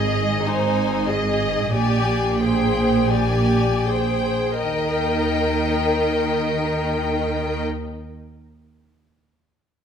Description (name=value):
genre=classical, slow romantic movement for string orchestra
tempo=38-50 BPM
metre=4/4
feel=rubato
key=Eb major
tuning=A4 = 440 Hz
part: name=clear studio violin section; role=melody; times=0.0-7.6 s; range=Eb5 to Ab5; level=-28 LUFS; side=left 6 dB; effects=none
part: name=rich chamber violin section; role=second line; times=0.0-7.6 s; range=C5 to Eb5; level=-26 LUFS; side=left 1 dB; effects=none
part: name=rich chamber viola section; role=accompaniment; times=0.0-7.6 s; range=Eb4 to Bb4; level=-24 LUFS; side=left 1 dB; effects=none
part: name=rich chamber double bass section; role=bass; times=0.0-7.6 s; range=Ab1 to Eb2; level=-26 LUFS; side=right 2 dB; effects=none
part: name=rich symphonic cello section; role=bass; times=0.0-7.6 s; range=Ab2 to Eb3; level=-24 LUFS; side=right 2 dB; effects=none
room=moderate recital hall reverb, RT60 1.4 s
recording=minimal, uncompressed stereo recording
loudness=-18 LUFS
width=side -7 dB against mid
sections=0.0-4.6 A section; 4.6-9.8 B section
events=slowing down 0.0-4.6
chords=0.0 Ab; 1.7 Bb13; 4.6 Eb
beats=0.47 1.73 3.11 | 4.60 5.98 7.37